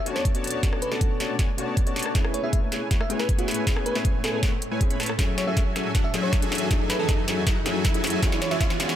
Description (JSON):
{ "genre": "future bass", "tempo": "158 BPM", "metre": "4/4", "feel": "half-time", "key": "F# minor", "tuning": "A4 = 441 Hz", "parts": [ { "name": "bell-like FM electric piano", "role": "melody", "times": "0.0-8.7 s", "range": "F#4 to E5", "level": "-32 LUFS", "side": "right 1 dB", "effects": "chorus, sidechain pumping, tape echo" }, { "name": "shimmering ambient pad", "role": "sustained chords", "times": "0.0-9.0 s", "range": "E2 to C#5", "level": "-37 LUFS", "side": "equal", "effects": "chorus, built-in reverb, sidechain pumping" }, { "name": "riser", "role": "sound effects", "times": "0.8-9.0 s", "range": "none", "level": "-35 LUFS", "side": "right 1 dB", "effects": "none" }, { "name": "dark baby grand piano", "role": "accompaniment", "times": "0.1-8.9 s", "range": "G#3 to G#4", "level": "-32 LUFS", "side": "left 3 dB", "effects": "sidechain pumping, tape echo" }, { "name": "big bright polysynth", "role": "riff", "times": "0.1-9.0 s", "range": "E3 to B5", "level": "-29 LUFS", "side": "left 2 dB", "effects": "chorus, sidechain pumping" }, { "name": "trap drum kit", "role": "drums", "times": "0.1-9.0 s", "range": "hi-hat, rim click, snare drum", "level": "-30 LUFS", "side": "equal", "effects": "overdrive, high-pass filter on snare, high-pass filter on hats, high-pass filter on room" }, { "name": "electronic kick drum", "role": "drums", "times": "0.3-8.7 s", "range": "none", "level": "-24 LUFS", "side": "equal", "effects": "overdrive" } ], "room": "light reverb, digital ambience", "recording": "none", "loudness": "-22 LUFS", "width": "side -11 dB against mid", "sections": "0.0-9.0 A section", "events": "build-up 0.0-9.0; drum fill 0.0-9.0; riser 0.8-9.0", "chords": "0.0 Bm9; 2.2 Amaj7; 5.2 F#m7; 8.2 E13" }